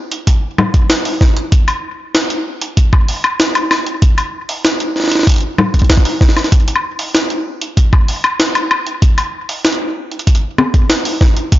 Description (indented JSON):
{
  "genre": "IDM",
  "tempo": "96 BPM",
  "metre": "4/4",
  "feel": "straight",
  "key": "none",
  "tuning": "none",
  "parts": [
    { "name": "jungle sampler-style drum kit", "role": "drums", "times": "0.1-11.6 s", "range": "congas, hi-hat, snare drum, woodblock", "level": "-15 LUFS", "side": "equal", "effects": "tape echo" },
    { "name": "electronic kick drum", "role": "drums", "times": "0.3-11.6 s", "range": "none", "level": "-10 LUFS", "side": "equal", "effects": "none" }
  ],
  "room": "light reverb",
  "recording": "blown-out, overdriven recording, overdrive, nothing above 7.5 kHz",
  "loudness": "-12 LUFS",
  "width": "side -15 dB against mid",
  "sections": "0.0-11.6 A section",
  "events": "none",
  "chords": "none"
}